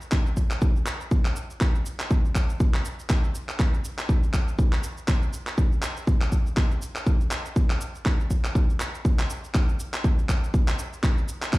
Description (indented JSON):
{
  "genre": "house",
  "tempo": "121 BPM",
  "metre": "4/4",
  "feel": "swing 57% on 16ths",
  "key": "none",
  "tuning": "none",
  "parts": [
    { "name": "electronic shaker and handclaps", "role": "drums", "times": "0.0-11.6 s", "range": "none", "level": "-32 LUFS", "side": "equal", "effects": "none" },
    { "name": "electronic kick drum", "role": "drums", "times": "0.1-11.6 s", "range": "none", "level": "-22 LUFS", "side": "equal", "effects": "none" }
  ],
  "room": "little or no reverb",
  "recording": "played on a big sound system in a bare room, large studio reverb",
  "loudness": "-22 LUFS",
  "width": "side -20 dB against mid",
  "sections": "0.0-11.6 A section",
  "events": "none",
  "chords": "none"
}